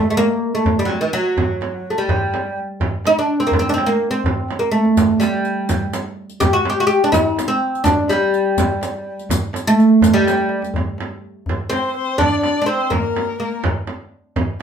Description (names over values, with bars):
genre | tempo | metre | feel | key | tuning
Persian modal ensemble | 83 BPM (dotted quarters) | 6/8 | straight | G avaz esfahan | A4 = 440 Hz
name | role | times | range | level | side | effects
oud | melody | 0.0-13.6 s | E3-50c to G4 | -16 LUFS | right 1 dB | none
frame drum | percussion | 0.2-14.5 s | none | -24 LUFS | right 3 dB | none
tombak | percussion | 0.2-14.5 s | none | -24 LUFS | left 2 dB | none
riq | percussion | 5.0-10.7 s | none | -27 LUFS | left 4 dB | none
clear kamancheh | second line | 11.7-13.6 s | Bb4 to D5 | -23 LUFS | left 5 dB | none
room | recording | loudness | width
wet studio reverb, RT60 0.5 s | band playing live in one room | -16 LUFS | side -7 dB against mid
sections
0.0-10.8 A section; 10.8-14.6 B section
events
drum fill 4.5-5.0, 10.3-10.8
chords
none